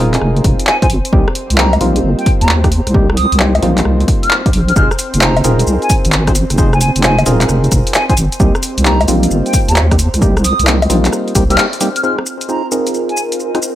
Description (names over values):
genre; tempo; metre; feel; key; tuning
UK garage, two-step garage; 132 BPM; 4/4; swing 66% on 16ths; F minor; A4 = 440 Hz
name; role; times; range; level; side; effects
warm analog pad; sustained chords; 0.0-13.8 s; C4 to C5; -26 LUFS; right 2 dB; chorus, sidechain pumping
percussive organ stab; stabs; 0.0-13.6 s; G3 to C5; -18 LUFS; equal; chorus, digital delay
deep soft wobble bass; bass; 0.0-11.6 s; Eb1 to Eb2; -13 LUFS; equal; chorus
punchy analog drum machine; drums; 0.1-13.7 s; bongos, handclaps, hi-hat, rim click, shaker; -17 LUFS; left 1 dB; none
electronic kick drum; drums; 0.4-11.5 s; none; -14 LUFS; equal; none
wooden flute; melody; 0.7-13.2 s; G5 to F6; -19 LUFS; equal; digital delay
ethereal airy pad; texture; 12.3-13.8 s; F4 to Eb5; -22 LUFS; left 1 dB; ensemble chorus, built-in reverb, sidechain pumping
room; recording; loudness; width
light reverb; none; -10 LUFS; side -13 dB against mid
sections
0.0-12.0 A section; 12.0-13.8 B section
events
band accent 11.6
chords
0.0 Fm7; 1.1 Cm7; 4.8 Fm7; 8.4 Cm7; 12.0 Fm7